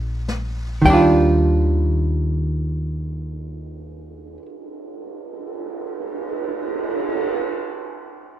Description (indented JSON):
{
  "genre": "jazz ballad",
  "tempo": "free time",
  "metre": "none",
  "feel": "none",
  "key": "Eb major",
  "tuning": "A4 = 436 Hz",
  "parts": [
    { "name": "hollow-body jazz guitar", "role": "accompaniment", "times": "0.0-4.5 s", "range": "Eb3 to G5", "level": "-18 LUFS", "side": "right 2 dB", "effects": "none" },
    { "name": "upright bass", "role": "bass", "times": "0.0-4.4 s", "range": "Bb1 to Eb2", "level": "-21 LUFS", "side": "equal", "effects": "none" },
    { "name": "jazz brush drum kit", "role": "drums", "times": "0.3-7.4 s", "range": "crash cymbal, cymbal swell, kick drum, snare drum", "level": "-27 LUFS", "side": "right 3 dB", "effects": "none" }
  ],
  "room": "light reverb",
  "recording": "dark, warm production",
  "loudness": "-18 LUFS",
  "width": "side -10 dB against mid",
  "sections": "0.8-7.7 A section",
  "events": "none",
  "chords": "0.0 Bb6; 0.8 Ebmaj9",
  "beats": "free time"
}